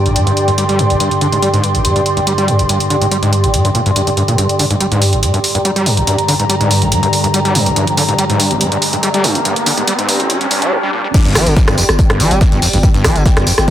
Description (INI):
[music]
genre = driving peak-time techno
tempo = 142 BPM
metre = 4/4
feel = straight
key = G minor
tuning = A4 = 440 Hz
[part]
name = screaming distorted acid line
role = riff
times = 0.0-13.5 s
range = G1 to G3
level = -16 LUFS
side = equal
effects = distortion, chorus, sidechain pumping, digital delay
[part]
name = metallic inharmonic drone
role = drone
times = 0.0-10.7 s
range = G2 to D3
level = -21 LUFS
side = left 1 dB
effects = chorus, built-in reverb, sidechain pumping
[part]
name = airy breathy pad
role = texture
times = 0.0-13.7 s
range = G4 to C6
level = -18 LUFS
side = right 1 dB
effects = chorus, sidechain pumping
[part]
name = punchy analog drum machine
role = drums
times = 0.1-13.7 s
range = crash cymbal, hi-hat, rim click, tambourine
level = -18 LUFS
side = right 1 dB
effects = high-pass filter on hats, high-pass filter on cymbals, high-pass filter on perc, high-pass filter on snare, high-pass filter on room
[part]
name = riser and swell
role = sound effects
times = 6.4-11.1 s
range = none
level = -23 LUFS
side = equal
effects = none
[part]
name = breakbeat sampler-style drum kit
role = drums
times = 11.1-13.7 s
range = hi-hat, snare drum, tambourine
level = -26 LUFS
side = left 1 dB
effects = sidechain pumping on perc, high-pass filter on perc, sidechain pumping on hats, high-pass filter on hats, high-pass filter on snare, high-pass filter on room
[part]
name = electronic kick drum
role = drums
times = 11.1-13.7 s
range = none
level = -12 LUFS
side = equal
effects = none
[part]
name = growling 808-style bass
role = bass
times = 11.3-13.7 s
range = G1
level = -17 LUFS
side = equal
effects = overdrive, sidechain pumping, low-pass filter
[sound]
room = light reverb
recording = high-pass filter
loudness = -11 LUFS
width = side -11 dB against mid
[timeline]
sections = 0.0-4.4 A section; 4.4-11.1 B section; 11.1-13.7 C section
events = filter sweep on acid bass 0.0-4.4, 4.4-11.1; build-up 4.4-11.1; riser 6.4-10.7; swell 10.3-11.1; drop 11.1-13.7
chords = 0.0 G5; 4.4 Gm; 11.1 G5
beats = 0.16 0.58 | 1.00 1.42 1.85 2.27 | 2.69 3.12 3.54 3.96 | 4.38 4.80 5.23 5.65 | 6.07 6.50 6.92 7.34 | 7.76 8.19 8.61 9.03 | 9.45 9.88 10.30 10.72 | 11.14 11.56 11.99 12.41 | 12.83 13.26 13.68